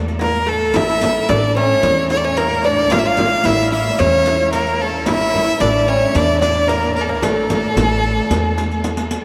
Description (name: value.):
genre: Arabic maqam ensemble.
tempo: 111 BPM.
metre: 4/4.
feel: straight.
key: A maqam hijaz.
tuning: A4 = 437 Hz.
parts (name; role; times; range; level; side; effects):
upright bass; bass; 0.0-9.2 s; A1 to E2; -25 LUFS; equal; none.
dark studio cello section; drone; 0.0-9.2 s; A2; -32 LUFS; equal; none.
riq; percussion; 0.1-9.2 s; none; -30 LUFS; equal; none.
clear violin; melody; 0.2-8.8 s; A4 to F5; -19 LUFS; equal; analog delay.
oud; second line; 0.2-8.8 s; A3 to F4; -23 LUFS; equal; none.
frame drum; percussion; 0.2-9.0 s; none; -27 LUFS; equal; none.
room: wet huge ambient reverb, RT60 8.1 s.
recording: dreamy mix soaked in reverb.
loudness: -16 LUFS.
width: mono.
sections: 0.0-9.2 A section.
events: drum fill 8.8-9.2.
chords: none.